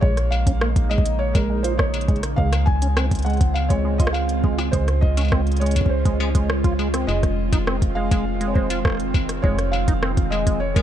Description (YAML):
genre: IDM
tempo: 102 BPM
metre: 4/4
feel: straight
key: unclear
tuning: A4 = 441 Hz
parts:
  - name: felt-muted upright piano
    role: melody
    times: 0.0-10.8 s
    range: Bb4 to Ab5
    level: -28 LUFS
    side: equal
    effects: tape echo
  - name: warbly tape-like pad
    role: sustained chords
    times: 0.0-10.8 s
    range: Db3 to F4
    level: -27 LUFS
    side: right 2 dB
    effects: chorus, built-in reverb, phaser
  - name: deep acid bass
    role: arpeggios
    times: 0.0-10.8 s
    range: Ab3 to F4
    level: -29 LUFS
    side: right 2 dB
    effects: cassette tape, dub echo
  - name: metallic FM bass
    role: bass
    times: 0.0-10.8 s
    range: F1 to Db2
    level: -23 LUFS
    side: equal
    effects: none
  - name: electronic kick drum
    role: drums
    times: 0.0-10.8 s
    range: none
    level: -19 LUFS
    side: equal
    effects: overdrive, studio reverb
  - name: industrial drum kit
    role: drums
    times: 0.2-10.8 s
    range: hi-hat, rim click, struck metal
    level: -28 LUFS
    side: left 1 dB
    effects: studio reverb
room: little or no reverb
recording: dark, warm production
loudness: -18 LUFS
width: side -10 dB against mid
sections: 0.0-10.8 A section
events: none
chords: 0.0 Bbm7; 2.4 Dbmaj7; 7.1 Fm7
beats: | 0.03 0.61 1.20 1.79 | 2.38 2.97 3.56 4.14 | 4.73 5.32 5.91 6.50 | 7.08 7.67 8.26 8.85 | 9.44 10.03 10.61